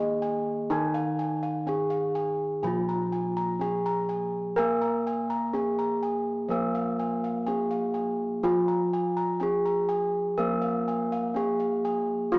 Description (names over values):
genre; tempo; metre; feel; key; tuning
Javanese gamelan; 62 BPM; 4/4; straight; unclear; A4 = 442 Hz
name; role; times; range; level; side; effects
gamelan-type bronze metallophone; melody; 0.0-12.4 s; Eb4-20c to Bb4; -29 LUFS; equal; none
gamelan-type bronze metallophone; accompaniment; 0.0-12.4 s; Eb3-20c to Bb3; -31 LUFS; equal; none
gamelan-type bossed gongs; arpeggios; 0.0-12.4 s; Eb5-20c to Bb5; -32 LUFS; equal; none
gamelan-type bossed gongs; bass; 0.0-12.4 s; Bb2 to Bb4; -32 LUFS; equal; none
room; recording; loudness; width
moderate recital hall reverb, RT60 1.5 s; small speaker sound; -25 LUFS; side -27 dB against mid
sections
0.0-12.4 A section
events
none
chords
none